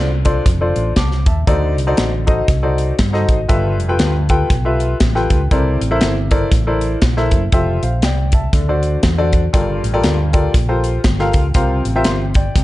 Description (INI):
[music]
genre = uptempo gospel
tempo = 119 BPM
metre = 4/4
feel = swing 59% on 8ths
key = F major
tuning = A4 = 441 Hz
[part]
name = clear grand piano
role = accompaniment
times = 0.0-12.6 s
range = G2 to D6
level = -19 LUFS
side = left 2 dB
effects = none
[part]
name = hollow-body short-scale fingered electric bass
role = bass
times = 0.0-12.6 s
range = F1 to G2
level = -18 LUFS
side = equal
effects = none
[part]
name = crisp fusion drum kit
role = drums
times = 0.2-12.6 s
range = hi-hat, kick drum, snare drum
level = -17 LUFS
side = equal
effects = none
[sound]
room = light reverb, studio reverb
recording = dark, warm production, nothing above 10.3 kHz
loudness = -13 LUFS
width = side -16 dB against mid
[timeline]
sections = 0.0-12.6 A section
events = none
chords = 0.0 F6; 1.5 D7b9; 3.5 G13; 5.5 C13; 7.5 Fmaj9; 8.5 D7; 9.5 Gm9; 11.6 C7sus4